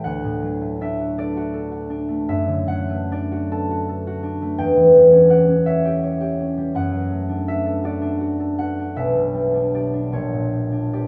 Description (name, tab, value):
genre	classical, solo harp piece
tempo	47-57 BPM (dotted quarters)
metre	6/8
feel	rubato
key	D major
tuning	A4 = 441 Hz
part	concert harp	solo	0.0-11.1 s	Bb1 to A5	-20 LUFS	equal	none
room	light reverb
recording	close, detailed microphones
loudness	-20 LUFS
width	mono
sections	0.0-11.1 A section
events	none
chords	0.0 D; 2.3 D/F#; 4.6 C#dim/E; 6.7 D/F#; 9.0 G/B; 10.1 Gm/Bb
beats	| 0.04 1.16 | 2.27 3.50 | 4.59 5.67 | 6.74 7.83 | 8.96 10.13